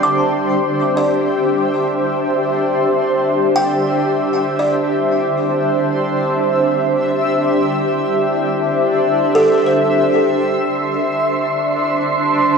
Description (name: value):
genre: ambient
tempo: free time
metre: none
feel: none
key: unclear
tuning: A4 = 440 Hz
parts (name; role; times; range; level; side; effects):
- granular cloud pad; sustained chords; 0.0-12.6 s; D4 to E5; -15 LUFS; equal; built-in reverb, lush chorus
- buzzing kalimba; arpeggios; 0.0-10.7 s; A4 to D6; -20 LUFS; equal; diffuse ambient delay
- wind-like tuned noise texture; texture; 10.4-12.6 s; C6; -20 LUFS; right 4 dB; built-in reverb, lush chorus
room: wet plate reverb, RT60 3.2 s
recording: dreamy mix soaked in reverb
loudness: -14 LUFS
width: side -5 dB against mid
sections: 0.0-12.6 A section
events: none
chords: 0.0 C